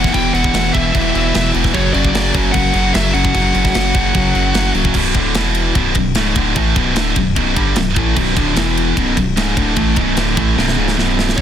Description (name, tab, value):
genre	heavy metal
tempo	150 BPM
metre	4/4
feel	straight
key	B minor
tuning	A4 = 440 Hz
part	high-gain lead guitar	melody	0.0-4.7, 11.4 s	C#5 to G5	-20 LUFS	left 2 dB	distortion, ping-pong delay
part	heavy high-gain guitar	riff	0.0-11.4 s	B1 to A3	-20 LUFS	left 11 dB	distortion
part	heavy high-gain guitar	riff	0.0-11.4 s	B1 to A3	-19 LUFS	right 11 dB	distortion
part	raw garage guitar	riff	0.0-5.0, 8.2-11.4 s	B1 to A3	-21 LUFS	right 1 dB	overdrive
part	pure sine sub bass	bass	0.0-11.4 s	B0 to A1	-20 LUFS	equal	none
part	tight metal drum kit	drums	0.0-11.4 s	crash cymbal, hi-hat, kick drum, ride cymbal, snare drum	-19 LUFS	equal	soft clipping on kick
room	small room ambience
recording	dense, heavily limited modern master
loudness	-13 LUFS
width	side -9 dB against mid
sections	0.0-5.0 A section; 5.0-11.4 B section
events	drum fill 10.6-11.4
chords	0.0 E5; 1.7 F#5; 5.0 Bm; 5.4 E5; 5.8 Bm; 8.6 E5; 9.0 Bm